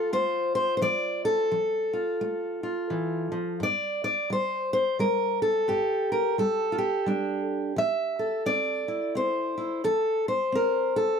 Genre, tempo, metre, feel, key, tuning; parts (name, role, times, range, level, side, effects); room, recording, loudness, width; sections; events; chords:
folk, solo fingerstyle acoustic guitar; 87 BPM; 3/4; swing 60% on 8ths; G dorian; A4 = 440 Hz
fingerpicked steel-string acoustic guitar; solo; 0.0-11.2 s; G2 to E5; -24 LUFS; equal
light reverb; dry, close 1970s-style studio recording; -24 LUFS; side -6 dB against mid
0.0-3.6 A section; 3.6-11.2 B section
0.0 F; 3.6 G5; 7.8 Fmaj7